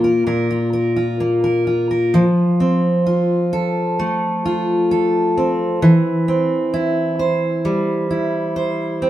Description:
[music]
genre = pop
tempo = 65 BPM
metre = 4/4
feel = straight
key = F major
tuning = A4 = 440 Hz
[part]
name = fingerpicked steel-string acoustic guitar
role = solo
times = 0.0-9.1 s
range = Bb2 to C5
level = -15 LUFS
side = equal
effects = none
[sound]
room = moderate studio reverb, RT60 0.8 s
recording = band playing live in one room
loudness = -15 LUFS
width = side -13 dB against mid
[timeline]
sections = 0.0-2.1 A section; 2.1-9.1 B section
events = none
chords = 0.0 Bb5; 2.1 F; 5.8 C/E

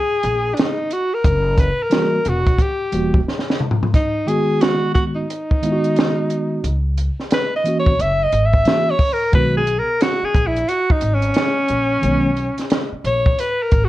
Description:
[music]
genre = hip hop, jazz-hop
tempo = 89 BPM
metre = 4/4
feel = swing 62% on 16ths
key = B major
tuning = A4 = 440 Hz
[part]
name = breathy alto saxophone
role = melody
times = 0.0-13.9 s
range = C#4 to E5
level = -19 LUFS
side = equal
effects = slapback echo
[part]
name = upright bass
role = bass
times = 0.2-13.9 s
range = E1 to C#2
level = -21 LUFS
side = equal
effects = none
[part]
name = compact cocktail drum kit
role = drums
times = 0.2-13.9 s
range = hi-hat, kick drum, snare drum, toms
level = -18 LUFS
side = equal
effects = none
[part]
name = mellow tine electric piano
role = accompaniment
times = 1.9-12.3 s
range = D#3 to F#4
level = -20 LUFS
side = right 1 dB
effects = medium stereo tremolo
[sound]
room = light reverb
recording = worn, warbling old tape, cassette tape, warbly pitch drift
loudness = -16 LUFS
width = side -15 dB against mid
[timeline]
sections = 0.0-3.9 A section; 3.9-13.9 B section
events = drum fill 3.3-3.9; alto saxophone solo 3.9-13.9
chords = 0.0 C#sus2 (rootless); 1.2 F#7b9; 3.9 B6; 5.3 G#m7; 6.6 C#m; 8.0 F#7; 9.3 B6

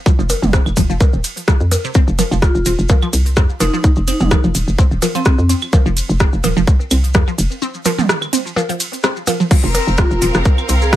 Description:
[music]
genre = minimal techno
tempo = 127 BPM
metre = 4/4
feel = swing 55% on 16ths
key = unclear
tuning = A4 = 441 Hz
[part]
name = resonant blip pluck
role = riff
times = 0.1-11.0 s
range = C3 to C4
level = -21 LUFS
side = right 1 dB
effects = phaser, sidechain pumping, dub echo
[part]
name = electronic kick drum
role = drums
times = 0.1-11.0 s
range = none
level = -12 LUFS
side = equal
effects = overdrive
[part]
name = maracas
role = percussion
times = 0.1-11.0 s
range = none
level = -27 LUFS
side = left 2 dB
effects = none
[part]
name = hollow knocking FM bass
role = bass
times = 0.2-11.0 s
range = Eb1 to F2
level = -17 LUFS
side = equal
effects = tube saturation, sidechain pumping
[part]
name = minimal click drum kit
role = drums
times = 0.3-11.0 s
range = crash cymbal, hi-hat, ride cymbal, rim click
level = -21 LUFS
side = right 1 dB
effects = overdrive
[part]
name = electronic percussion blips, toms and claves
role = percussion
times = 0.3-10.7 s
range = none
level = -22 LUFS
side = right 1 dB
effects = tape echo
[part]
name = vibraphone with medium mallets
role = melody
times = 2.4-5.3, 10.0-11.0 s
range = C4 to Ab4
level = -22 LUFS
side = left 1 dB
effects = tape echo
[part]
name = rich studio string section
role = texture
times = 9.5-11.0 s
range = C4 to F5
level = -22 LUFS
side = equal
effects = sidechain pumping
[sound]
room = little or no reverb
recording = none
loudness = -13 LUFS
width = side -13 dB against mid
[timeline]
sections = 0.0-9.5 A section; 9.5-11.0 A section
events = drop 0.0-9.5, 9.5-11.0; break 7.6-9.5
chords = 0.0 F5

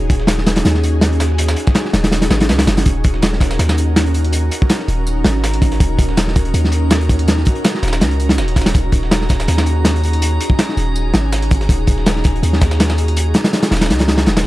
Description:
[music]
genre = drum and bass, jungle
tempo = 163 BPM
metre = 4/4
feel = swing 54% on 16ths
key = Eb minor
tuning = A4 = 440 Hz
[part]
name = ethereal airy pad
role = sustained chords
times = 0.0-14.5 s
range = Db4 to Bb4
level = -23 LUFS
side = right 1 dB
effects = ensemble chorus, built-in reverb
[part]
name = long sustained 808-style bass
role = bass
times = 0.0-14.5 s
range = Eb1 to Eb2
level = -16 LUFS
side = equal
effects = none
[part]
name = crunchy breakbeat drum kit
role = drums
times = 0.1-14.4 s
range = hi-hat, kick drum, snare drum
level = -15 LUFS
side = equal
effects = none
[part]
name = dusty soul sampler-style drum kit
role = drums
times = 0.1-14.4 s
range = hi-hat, snare drum, tambourine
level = -26 LUFS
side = right 1 dB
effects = high-pass filter on snare, high-pass filter on perc, high-pass filter on hats, high-pass filter on room
[part]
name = drifting glass-harmonics texture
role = texture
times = 3.5-14.5 s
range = Bb5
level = -31 LUFS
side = left 1 dB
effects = chorus, built-in reverb
[sound]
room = studio reverb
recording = dry, gritty hardware recording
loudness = -12 LUFS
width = side -17 dB against mid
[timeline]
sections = 0.0-14.5 A section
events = none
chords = 0.0 Ebm7

